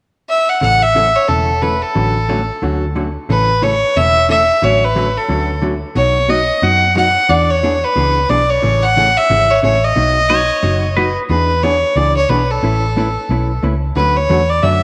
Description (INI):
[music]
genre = country, western swing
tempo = 180 BPM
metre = 4/4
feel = swing 62% on 8ths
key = A major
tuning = A4 = 441 Hz
[part]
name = warm fiddle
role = melody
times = 0.3-14.8 s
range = A4 to F#5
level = -16 LUFS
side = equal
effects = none
[part]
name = hollow-body jazz guitar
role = accompaniment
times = 0.6-14.8 s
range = B2 to B4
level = -23 LUFS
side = equal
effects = none
[part]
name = vintage muted picked electric bass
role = bass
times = 0.6-14.8 s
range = E1 to F#2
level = -20 LUFS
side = equal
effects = none
[part]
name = clean lap steel guitar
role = second line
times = 10.3-11.2 s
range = B4 to C#5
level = -22 LUFS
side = equal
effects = none
[sound]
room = moderate plate reverb, RT60 3.0 s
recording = none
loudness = -14 LUFS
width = mono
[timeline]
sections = 0.6-3.3 A section; 3.3-14.0 B section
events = none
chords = 0.0 N.C.; 0.6 A; 2.0 Dmaj7/A; 3.3 A; 4.6 Dmaj7/A; 6.0 B; 7.3 E7; 8.6 Amaj7; 10.0 B; 11.3 E7; 12.6 Aadd9; 14.0 Dmaj7